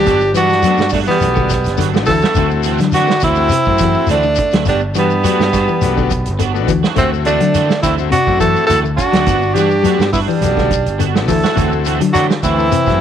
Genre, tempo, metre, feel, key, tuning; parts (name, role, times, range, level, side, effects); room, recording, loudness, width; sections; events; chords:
afrobeat; 104 BPM; 4/4; straight; D mixolydian; A4 = 443 Hz
clear tenor saxophone; melody; 0.0-13.0 s; B3 to A4; -16 LUFS; equal
raspy alto saxophone; second line; 0.0-13.0 s; G3 to E4; -22 LUFS; right 10 dB
electric guitar at the edge of break-up; arpeggios; 0.0-12.9 s; C3 to F#3; -21 LUFS; left 8 dB; ensemble chorus
electric guitar at the edge of break-up; stabs; 0.0-12.8 s; E3 to F#4; -24 LUFS; right 10 dB; analog chorus
fingered electric bass; bass; 0.0-13.0 s; G1 to D3; -19 LUFS; equal
vintage drum kit; drums; 0.1-13.0 s; hi-hat, kick drum, snare drum; -21 LUFS; right 3 dB
shekere; percussion; 0.1-13.0 s; -23 LUFS; left 4 dB
combo organ; accompaniment; 0.6-13.0 s; A3 to A4; -23 LUFS; left 11 dB
bright trombone section; second line; 11.3-13.0 s; E3 to A3; -23 LUFS; left 9 dB
moderate spring reverb, RT60 1.5 s, studio reverb; 1960s-style stereo with parts hard left and right; -12 LUFS; side -9 dB against mid
0.0-13.0 A section
0.1 Gmaj7; 2.4 D9; 4.7 Gmaj7; 7.0 D9; 9.3 Gmaj7; 11.6 D9